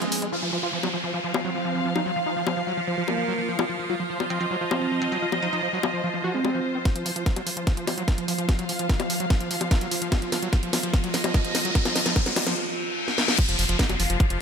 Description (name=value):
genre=psychedelic trance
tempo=147 BPM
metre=4/4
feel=straight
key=unclear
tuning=A4 = 441 Hz
part: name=wide unison lead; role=melody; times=0.0-6.8 s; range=F3 to F4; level=-30 LUFS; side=right 1 dB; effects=phaser, sidechain pumping, ping-pong delay
part: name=evolving wavetable pad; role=sustained chords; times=0.0-14.4 s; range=F3 to F4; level=-32 LUFS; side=right 3 dB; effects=phaser, built-in reverb, sidechain pumping
part: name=overdriven acid bass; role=riff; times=0.0-14.4 s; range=F3 to Gb4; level=-32 LUFS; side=right 1 dB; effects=distortion, auto-pan, cassette tape, sidechain pumping, ping-pong delay
part: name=garage drum kit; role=drums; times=0.0-14.4 s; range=bongos, crash cymbal, hi-hat, snare drum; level=-28 LUFS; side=left 2 dB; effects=none
part: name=downlifter, riser and reverse cymbal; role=sound effects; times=0.3-3.6, 9.7-14.4 s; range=none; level=-29 LUFS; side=left 2 dB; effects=none
part: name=rich symphonic string section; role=texture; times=0.3-14.4 s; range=F4 to F5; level=-31 LUFS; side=equal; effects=sidechain pumping
part: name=metallic wobble bass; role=second line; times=4.3-5.6 s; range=C4 to Eb4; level=-38 LUFS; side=right 2 dB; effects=none
part: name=electronic kick drum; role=drums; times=6.9-14.3 s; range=none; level=-22 LUFS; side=equal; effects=none
part: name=round analog bass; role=bass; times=13.5-14.4 s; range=F1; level=-26 LUFS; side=equal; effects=tube saturation
room=moderate lush hall reverb, RT60 2.1 s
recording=none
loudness=-22 LUFS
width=side -6 dB against mid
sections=0.3-6.9 A section; 6.9-13.4 B section; 13.4-14.4 C section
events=break 0.0-0.3; build-up 6.9-13.4; drum fill 6.9-12.6, 13.1-13.4; filter sweep on acid bass 6.9-13.4; filter sweep on ambient pad 6.9-13.4; riser 9.7-12.6; reverse cymbal 12.6-13.4; drop 13.4-14.4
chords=0.3 F5